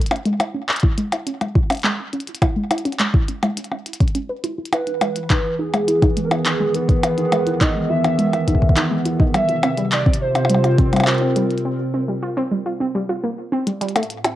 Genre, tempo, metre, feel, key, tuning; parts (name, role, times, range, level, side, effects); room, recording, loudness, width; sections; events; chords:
IDM; 104 BPM; 4/4; straight; A4 = 440 Hz
warbly dusty pluck; arpeggios; 0.0-14.3 s; G3 to B4; -23 LUFS; equal; chorus, cassette tape, analog delay
glitchy drum kit; drums; 0.0-14.4 s; handclaps, hi-hat, percussion blips; -22 LUFS; left 1 dB
electronic kick drum; drums; 0.8-10.9 s; -17 LUFS; equal
warbly nostalgic lead; melody; 4.7-11.6 s; G#4 to E5; -23 LUFS; right 1 dB; analog chorus, cassette tape, tape echo
warbly tape-like pad; sustained chords; 5.1-14.4 s; A2 to Bb4; -22 LUFS; equal; chorus, built-in reverb, cassette tape
wet studio reverb, RT60 0.6 s; home recording on cassette; -17 LUFS; side -14 dB against mid
0.0-14.0 A section
filter sweep on synth arpeggio sound 0.0-14.0; break 11.7-14.0; drum fill 13.7
0.1 C#m; 4.7 Emaj7; 9.3 C7sus4